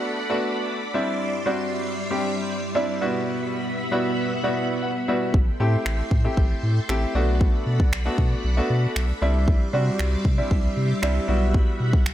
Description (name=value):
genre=dance-pop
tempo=116 BPM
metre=4/4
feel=straight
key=unclear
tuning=A4 = 439 Hz
part: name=clear baby grand piano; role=accompaniment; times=0.0-12.0 s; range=B2 to F#5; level=-26 LUFS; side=equal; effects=none
part: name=string machine, full ensemble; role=sustained chords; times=0.0-12.1 s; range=G3 to C6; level=-29 LUFS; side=right 1 dB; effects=ensemble chorus, sidechain pumping
part: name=warm sub bass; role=bass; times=5.3-12.1 s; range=A1 to C3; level=-22 LUFS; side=equal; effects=sidechain pumping
part: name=pop drum kit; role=drums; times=5.3-12.1 s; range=finger snaps, kick drum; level=-22 LUFS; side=equal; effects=none
room=digital ambience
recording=none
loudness=-20 LUFS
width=side -12 dB against mid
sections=0.0-12.1 A section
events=grand piano fill 4.6-5.3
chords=0.0 Bm7; 0.9 Cadd9; 3.0 Emadd9; 5.3 Am7; 7.2 Bm7; 9.2 Cadd9; 11.3 Emadd9/B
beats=0.17 0.68 | 1.20 1.72 2.24 2.75 | 3.27 3.79 4.30 4.82 | 5.34 5.86 6.37 6.89 | 7.41 7.93 8.44 8.96 | 9.48 9.99 10.51 11.03 | 11.55 12.06